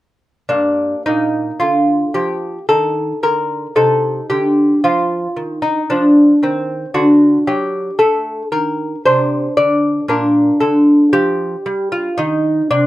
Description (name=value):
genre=classical, baroque-style dance for lute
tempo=57 BPM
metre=3/4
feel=rubato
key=G minor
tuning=A4 = 440 Hz
part: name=lute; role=solo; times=0.5-12.9 s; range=G2 to D5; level=-13 LUFS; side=equal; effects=none
room=light reverb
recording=none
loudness=-13 LUFS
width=side -16 dB against mid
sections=0.5-12.9 A section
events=none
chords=0.5 Gm; 2.7 Eb5; 3.8 Cmadd11; 7.0 D; 9.1 Csus2; 10.1 Gm/Bb